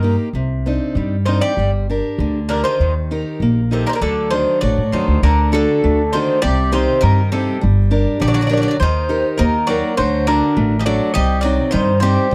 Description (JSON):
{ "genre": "greek folk, Greek bouzouki band", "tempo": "100 BPM", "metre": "2/4", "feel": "straight", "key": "D phrygian dominant", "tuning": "A4 = 440 Hz", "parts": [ { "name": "Greek bouzouki", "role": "melody", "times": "0.0-12.3 s", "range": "A4 to Eb5", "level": "-22 LUFS", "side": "equal", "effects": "none" }, { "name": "Greek bouzouki", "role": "second line", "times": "0.0-12.3 s", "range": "C3 to G3", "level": "-27 LUFS", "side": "equal", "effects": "none" }, { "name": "fingerpicked steel-string acoustic guitar", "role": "accompaniment", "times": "0.0-12.3 s", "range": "C3 to G5", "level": "-22 LUFS", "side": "equal", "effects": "none" }, { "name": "upright bass", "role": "bass", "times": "0.0-12.3 s", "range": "G1 to A2", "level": "-20 LUFS", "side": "equal", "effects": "none" } ], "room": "small room ambience", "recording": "dry, close 1970s-style studio recording", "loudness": "-17 LUFS", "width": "mono", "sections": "0.0-5.2 A section; 5.2-12.3 B section", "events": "speeding up 0.0-12.3", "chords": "0.3 Cmadd9; 1.6 Gm; 2.8 Eb; 4.0 D; 6.4 Cm; 7.6 Gm; 8.8 Eb; 10.0 D; 11.2 Cm" }